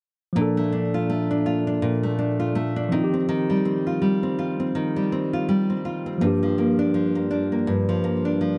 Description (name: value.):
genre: R&B.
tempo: 82 BPM.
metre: 4/4.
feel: swing 58% on 16ths.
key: Bb major.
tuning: A4 = 440 Hz.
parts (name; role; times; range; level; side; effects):
tine electric piano; accompaniment; 0.3-8.6 s; F3 to A4; -27 LUFS; equal; none.
nylon-string guitar; arpeggios; 0.4-8.6 s; G2 to F4; -25 LUFS; equal; digital delay.
room: light reverb, small room ambience.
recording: nothing above 10.4 kHz.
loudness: -23 LUFS.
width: mono.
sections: 0.4-8.6 A section.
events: none.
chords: 0.4 Bbmaj7; 2.9 Eb69; 6.2 Gm7.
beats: | 0.36 1.09 1.82 2.55 | 3.29 4.02 4.75 5.48 | 6.21 6.95 7.68 8.41.